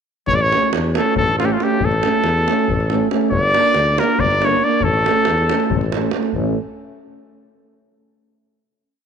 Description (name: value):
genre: balkan folk, Balkan brass band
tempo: 277 BPM (eighths)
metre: 7/8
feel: straight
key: unclear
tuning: A4 = 440 Hz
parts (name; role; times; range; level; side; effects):
- clear trumpet; melody; 0.3-5.9 s; F4 to D5; -18 LUFS; left 1 dB; none
- mellow tuba; bass; 0.3-6.6 s; G1 to E2; -22 LUFS; left 1 dB; tube saturation
- davul; percussion; 0.3-6.6 s; none; -23 LUFS; equal; none
- mellow French horn; accompaniment; 0.5-6.6 s; C#4 to D4; -26 LUFS; left 15 dB; none
- mellow euphonium; accompaniment; 0.5-6.6 s; A3 to Bb3; -23 LUFS; right 13 dB; none
room: moderate plate reverb, RT60 2.6 s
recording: 1960s-style stereo with parts hard left and right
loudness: -15 LUFS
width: side -7 dB against mid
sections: 0.3-6.3 A section; 6.3-7.9 final chord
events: none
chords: 0.3 A; 3.3 Gm; 4.8 A